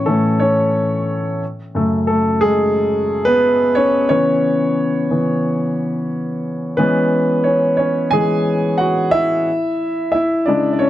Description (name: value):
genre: pop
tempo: 89 BPM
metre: 4/4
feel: straight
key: unclear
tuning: A4 = 441 Hz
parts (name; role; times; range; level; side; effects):
- warm grand piano; solo; 0.0-10.9 s; F#2 to G#5; -14 LUFS; equal; none
room: light reverb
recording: dry, close 1970s-style studio recording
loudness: -15 LUFS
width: side -13 dB against mid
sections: 0.0-6.8 A section; 6.8-10.9 B section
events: grand piano solo 0.0-6.8, 6.8-10.9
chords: 0.0 A; 1.4 F#madd9; 4.1 C#m7; 6.8 E6; 9.5 C#m